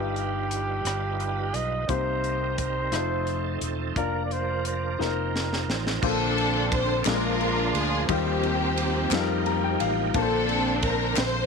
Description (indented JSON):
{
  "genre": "slow gospel",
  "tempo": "58 BPM (dotted quarters)",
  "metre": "6/8",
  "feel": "straight",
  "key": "Bb major",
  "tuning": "A4 = 440 Hz",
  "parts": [
    { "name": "mellow trumpet", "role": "melody", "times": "0.0-5.8 s", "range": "G4 to Eb5", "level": "-30 LUFS", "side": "right 2 dB", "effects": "none" },
    { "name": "clear baby grand piano", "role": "accompaniment", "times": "0.0-11.5 s", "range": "G2 to Bb5", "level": "-30 LUFS", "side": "left 12 dB", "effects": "none" },
    { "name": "bright tonewheel organ", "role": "sustained chords", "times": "0.0-11.5 s", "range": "C3 to C5", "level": "-32 LUFS", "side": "right 15 dB", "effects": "fast rotary speaker, overdrive, chorus vibrato" },
    { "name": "fingered electric bass", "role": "bass", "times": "0.0-11.5 s", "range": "E1 to F2", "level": "-30 LUFS", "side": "right 2 dB", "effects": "none" },
    { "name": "tight funk drum kit", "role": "drums", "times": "0.2-11.3 s", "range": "crash cymbal, hi-hat, kick drum, ride cymbal, rim click, snare drum", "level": "-31 LUFS", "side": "right 1 dB", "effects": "none" },
    { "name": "warm symphonic string section", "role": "melody", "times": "6.0-11.5 s", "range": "Bb3 to C5", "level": "-26 LUFS", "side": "left 2 dB", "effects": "tape echo" },
    { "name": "group handclap", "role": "percussion", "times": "7.0-11.5 s", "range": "none", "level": "-32 LUFS", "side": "left 16 dB", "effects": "none" }
  ],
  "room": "studio reverb",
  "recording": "1960s-style stereo with parts hard left and right",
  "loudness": "-23 LUFS",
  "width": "side -5 dB against mid",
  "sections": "0.0-6.0 A section; 6.0-11.5 B section",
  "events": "drum fill 5.0-6.0; grand piano fill 9.1-10.1",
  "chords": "0.0 G7b13; 1.9 Cm7; 2.9 F7; 4.0 Bb/F; 5.0 F7sus4; 6.0 Bbmaj9; 7.1 Bb7; 8.1 Eb69; 9.1 F9sus4; 10.1 Bbmaj9"
}